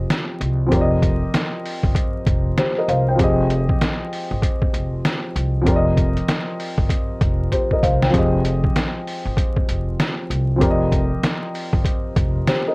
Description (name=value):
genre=hip hop, boom-bap hip-hop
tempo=97 BPM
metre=4/4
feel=swing 61% on 16ths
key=F minor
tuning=A4 = 439 Hz
part: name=dark baby grand piano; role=accompaniment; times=0.0-12.7 s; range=F3 to G5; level=-22 LUFS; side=equal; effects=cassette tape, high-pass filter, low-pass filter
part: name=upright bass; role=bass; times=0.0-12.4 s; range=F1 to C2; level=-22 LUFS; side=equal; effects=none
part: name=trip hop sampler-style drum kit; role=drums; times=0.1-12.6 s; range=hi-hat, kick drum, snare drum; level=-20 LUFS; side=equal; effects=overdrive
room=light reverb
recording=worn, warbling old tape, cassette tape, vinyl crackle, warbly pitch drift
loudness=-17 LUFS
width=side -27 dB against mid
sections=0.0-12.7 A section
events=drum fill 7.5-8.1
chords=0.0 Fm9; 0.7 Cm7/F; 3.2 Fm9; 5.7 Cm7/F; 8.1 Fm9; 10.6 Cm7/F